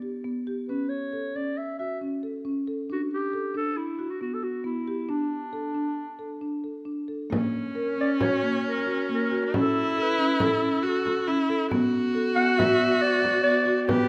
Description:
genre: contemporary instrumental, chamber music in an uneven meter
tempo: 136 BPM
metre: 5/4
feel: straight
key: B minor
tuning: A4 = 440 Hz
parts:
  - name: marimba with soft mallets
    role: arpeggios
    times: 0.0-14.1 s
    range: A#3 to A#4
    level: -30 LUFS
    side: equal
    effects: none
  - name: growling clarinet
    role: melody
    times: 0.7-14.1 s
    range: D4 to F#5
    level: -31 LUFS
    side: equal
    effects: none
  - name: warm viola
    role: second line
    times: 7.3-14.1 s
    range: C#4 to G4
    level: -29 LUFS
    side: equal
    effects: none
  - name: frame drum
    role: percussion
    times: 7.3-14.1 s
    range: none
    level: -33 LUFS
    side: equal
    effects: none
room: light reverb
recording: none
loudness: -26 LUFS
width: mono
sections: 0.0-7.3 A section; 7.3-14.1 B section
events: none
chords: 0.0 G; 0.7 F#m (rootless); 2.9 Bm; 5.1 Asus4; 7.3 F#; 9.5 A; 11.7 Bm

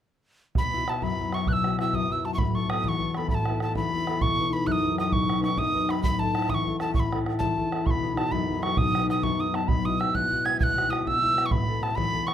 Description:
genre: celtic folk, Celtic slide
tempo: 132 BPM (dotted quarters)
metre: 12/8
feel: straight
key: B mixolydian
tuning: A4 = 440 Hz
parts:
  - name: mellow wooden whistle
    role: melody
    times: 0.6-12.3 s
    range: A5 to G#6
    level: -27 LUFS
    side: right 1 dB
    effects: none
  - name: concert harp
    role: accompaniment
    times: 0.6-12.3 s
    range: E2 to B4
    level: -27 LUFS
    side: left 3 dB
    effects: none
  - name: bodhran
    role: percussion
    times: 0.6-12.3 s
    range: none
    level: -29 LUFS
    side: right 2 dB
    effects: none
room: wet small room reverb, RT60 0.5 s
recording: none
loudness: -23 LUFS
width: side -10 dB against mid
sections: 0.6-12.3 A section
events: none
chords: 0.6 Bsus4; 2.4 Asus2; 4.2 Badd9; 6.0 A; 7.9 B; 9.7 Eadd9/B; 11.5 Aadd9

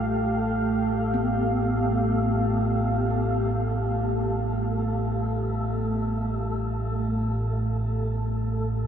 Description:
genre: dark ambient drone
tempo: free time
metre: none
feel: none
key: unclear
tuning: A4 = 440 Hz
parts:
  - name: deep dark ambient pad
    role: sustained chords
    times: 0.0-8.9 s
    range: A3 to F5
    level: -28 LUFS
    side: equal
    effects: chorus, built-in reverb, shimmer reverb
  - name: deep rumbling drone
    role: drone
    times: 0.0-8.9 s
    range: A1 to A2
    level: -27 LUFS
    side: equal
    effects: built-in reverb
  - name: wind-like tuned noise texture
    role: texture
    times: 0.0-8.9 s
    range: A3 to A4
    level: -33 LUFS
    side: equal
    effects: built-in reverb, ensemble chorus, shimmer reverb
  - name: gamelan-type bronze metallophone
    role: arpeggios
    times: 1.1-8.9 s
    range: B3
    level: -33 LUFS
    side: equal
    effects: tape echo, shimmer reverb
room: wet huge ambient reverb, RT60 9.0 s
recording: dreamy mix soaked in reverb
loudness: -23 LUFS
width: side -8 dB against mid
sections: 0.0-8.9 A section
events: none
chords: 0.0 Fadd9/A

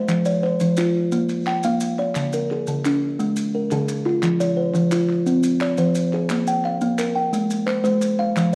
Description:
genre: southern african traditional, mbira-style interlocking cycle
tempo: 116 BPM (dotted quarters)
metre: 12/8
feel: straight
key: Bb equiheptatonic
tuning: A4 = 441 Hz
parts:
  - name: kalimba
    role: arpeggios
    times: 0.0-8.6 s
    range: Db3+43c to G5-43c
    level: -21 LUFS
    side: equal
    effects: none
  - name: group handclap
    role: percussion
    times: 0.1-8.5 s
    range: none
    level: -37 LUFS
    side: equal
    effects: none
  - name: maracas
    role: percussion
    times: 0.1-8.5 s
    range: none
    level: -40 LUFS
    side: equal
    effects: none
room: wet recital hall reverb, RT60 1.3 s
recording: worn, warbling old tape, cassette tape, warbly pitch drift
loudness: -21 LUFS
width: mono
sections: 0.0-6.3 A section; 6.3-8.6 B section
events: none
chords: 0.1 F5; 1.1 Bbm; 2.2 Db5; 4.2 F5; 6.3 Bb5; 7.3 Ab

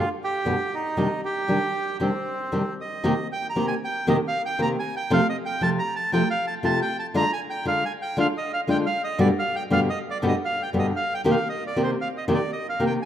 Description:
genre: tango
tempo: 117 BPM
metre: 4/4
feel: rubato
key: C minor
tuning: A4 = 440 Hz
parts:
  - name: bandoneon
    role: melody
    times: 0.0-13.1 s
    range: C4 to Bb5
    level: -26 LUFS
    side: right 2 dB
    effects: none
  - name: nylon-string guitar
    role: accompaniment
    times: 0.0-13.0 s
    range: G2 to G4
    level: -24 LUFS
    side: left 1 dB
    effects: none
room: wet plate reverb, RT60 2.6 s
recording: rough home demo mix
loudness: -22 LUFS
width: side -10 dB against mid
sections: 0.0-3.0 A section; 3.0-13.1 B section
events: none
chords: 0.0 G; 1.0 Cmadd9; 3.0 Cm7; 5.1 F/C; 7.1 Ddim; 9.2 G; 11.3 Cm7

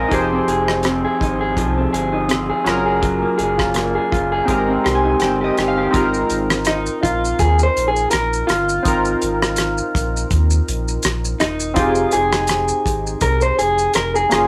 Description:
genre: indie pop, bedroom pop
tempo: 82 BPM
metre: 4/4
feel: swing 55% on 16ths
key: Ab major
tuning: A4 = 439 Hz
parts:
  - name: electric guitar through a small old amp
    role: accompaniment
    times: 0.0-14.5 s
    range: F3 to C5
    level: -21 LUFS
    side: equal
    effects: warbly pitch drift
  - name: warm analog keys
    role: accompaniment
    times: 0.0-14.5 s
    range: Bb3 to C6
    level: -24 LUFS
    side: equal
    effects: chorus
  - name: sub bass with octave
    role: bass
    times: 0.0-14.5 s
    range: Eb1 to Eb2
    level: -25 LUFS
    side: equal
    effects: none
  - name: damped 70s drum kit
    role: drums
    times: 0.1-14.5 s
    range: hi-hat, kick drum, rim click, shaker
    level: -24 LUFS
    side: equal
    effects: none
room: moderate studio reverb, RT60 0.5 s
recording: rough rehearsal-room recording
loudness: -18 LUFS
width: mono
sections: 0.0-5.9 A section; 5.9-14.5 B section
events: synth keys fill 4.5-5.9; clean electric guitar solo 5.9-14.5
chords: 0.1 Fm7; 2.7 Gbmaj9; 4.5 Abmaj7; 5.9 Ab69; 11.8 Fm7

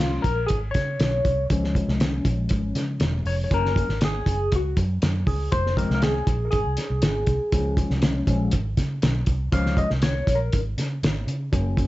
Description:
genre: uptempo 1960s-style soul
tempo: 120 BPM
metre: 4/4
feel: straight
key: Db major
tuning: A4 = 441 Hz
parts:
  - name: overdriven tine electric piano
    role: accompaniment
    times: 0.0-11.9 s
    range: F3 to F5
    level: -26 LUFS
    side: left 2 dB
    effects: phaser
  - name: vintage muted fingered electric bass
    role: bass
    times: 0.0-11.8 s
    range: Fb1 to Db3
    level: -25 LUFS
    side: equal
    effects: none
  - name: cloth-damped thuddy drum kit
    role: drums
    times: 0.2-11.9 s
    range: hi-hat, kick drum, snare drum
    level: -24 LUFS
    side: equal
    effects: none
room: light reverb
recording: dark, warm production, nothing above 7.9 kHz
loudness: -21 LUFS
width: side -17 dB against mid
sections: 0.0-11.9 A section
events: tine electric piano solo 0.0-11.9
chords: 0.0 Db; 3.5 Gb; 5.5 Fm; 7.5 Db

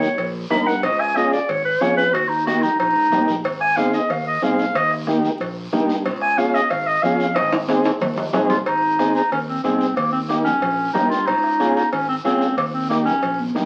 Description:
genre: latin, cumbia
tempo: 184 BPM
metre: 4/4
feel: straight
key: Ab major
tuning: A4 = 440 Hz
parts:
  - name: clear clarinet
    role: melody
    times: 0.0-13.4 s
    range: Bb3 to Cb6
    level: -22 LUFS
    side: equal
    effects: none
  - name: combo organ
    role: accompaniment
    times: 0.0-13.7 s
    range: Bb3 to Bb4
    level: -24 LUFS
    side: equal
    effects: none
  - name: modern bright fingered electric bass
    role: bass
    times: 0.0-13.7 s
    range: Ab1 to G2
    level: -32 LUFS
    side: equal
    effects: none
  - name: congas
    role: percussion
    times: 0.0-13.6 s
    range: none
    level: -31 LUFS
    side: equal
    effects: none
  - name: guiro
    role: percussion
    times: 0.0-13.7 s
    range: none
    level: -41 LUFS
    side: equal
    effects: none
  - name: cowbell and timbales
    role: percussion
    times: 0.2-13.4 s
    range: none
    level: -28 LUFS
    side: equal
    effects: none
  - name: bombo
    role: percussion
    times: 0.5-13.7 s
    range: none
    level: -38 LUFS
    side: equal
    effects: none
room: wet studio reverb, RT60 0.7 s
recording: very old 78 rpm record, vinyl crackle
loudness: -20 LUFS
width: mono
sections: 0.0-8.7 A section; 8.7-13.7 B section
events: clarinet solo 0.0-8.7; drum fill 7.4-8.7, 13.4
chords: 0.0 Eb7; 0.8 Db; 2.1 Eb; 3.4 Ab; 4.8 Eb; 6.1 Db; 7.4 Ab; 10.0 Eb7; 11.3 Db; 12.6 Eb7

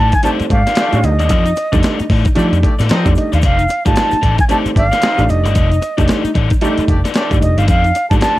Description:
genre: funk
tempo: 113 BPM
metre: 4/4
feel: swing 60% on 16ths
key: F mixolydian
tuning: A4 = 440 Hz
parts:
  - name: reedy concert flute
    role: melody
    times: 0.0-8.4 s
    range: Eb5 to A5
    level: -17 LUFS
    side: right 1 dB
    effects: none
  - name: crunchy overdriven guitar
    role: accompaniment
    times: 0.0-8.4 s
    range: Eb4 to D5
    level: -22 LUFS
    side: left 8 dB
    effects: none
  - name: vintage muted picked electric bass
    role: bass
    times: 0.0-8.2 s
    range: F1 to F3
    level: -15 LUFS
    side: equal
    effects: none
  - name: breakbeat sampler-style drum kit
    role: drums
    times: 0.1-8.4 s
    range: hi-hat, kick drum, snare drum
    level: -16 LUFS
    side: equal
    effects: none
  - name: egg shaker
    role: percussion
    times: 0.1-8.4 s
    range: none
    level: -41 LUFS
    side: left 5 dB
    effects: none
  - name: clear horn section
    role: second line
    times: 0.2-7.3 s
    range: A3 to Eb5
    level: -23 LUFS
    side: equal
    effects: none
  - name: clear upright piano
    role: stabs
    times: 0.2-8.4 s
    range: Eb3 to F4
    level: -20 LUFS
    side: right 2 dB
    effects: none
room: light reverb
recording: dark, warm production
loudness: -11 LUFS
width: side -16 dB against mid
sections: 0.0-8.4 A section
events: none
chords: 0.0 F13

